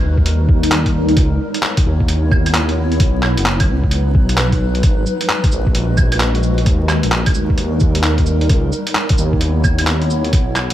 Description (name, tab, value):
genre	future garage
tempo	131 BPM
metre	4/4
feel	swing 64% on 16ths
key	unclear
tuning	A4 = 441 Hz
part	granular cloud pad	sustained chords	0.0-10.7 s	F#3 to D#5	-21 LUFS	equal	built-in reverb, sidechain pumping
part	dark detuned saw bass	bass	0.0-10.7 s	F#1 to D#2	-17 LUFS	equal	sidechain pumping
part	electronic kick drum	drums	0.2-10.4 s	none	-15 LUFS	equal	none
part	lo-fi sampler-style drum kit	drums	0.3-10.7 s	cabasa, claves, handclaps, hi-hat	-20 LUFS	equal	none
room	digital ambience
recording	vinyl crackle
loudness	-13 LUFS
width	side -12 dB against mid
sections	0.0-10.7 A section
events	none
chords	0.0 D#; 1.2 C#m7; 3.0 B; 4.8 G#m7; 6.7 D#; 8.5 C#m7